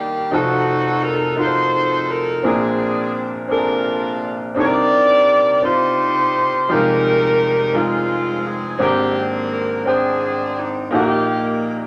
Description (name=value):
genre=gospel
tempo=57 BPM (dotted quarters)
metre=6/8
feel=straight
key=unclear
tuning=A4 = 438 Hz
part: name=mellow saxophone section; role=melody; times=0.0-11.9 s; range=G3 to D5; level=-20 LUFS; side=equal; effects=none
part: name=clear baby grand piano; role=accompaniment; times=0.0-11.9 s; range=F1 to G5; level=-22 LUFS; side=equal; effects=none
room=wet studio reverb, RT60 0.7 s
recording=none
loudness=-18 LUFS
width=mono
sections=0.0-11.9 A section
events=none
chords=0.3 F7b9; 2.4 Bb9; 4.6 Cm9; 6.7 Fm9; 8.8 Abmaj9#11; 10.9 Eb/Bb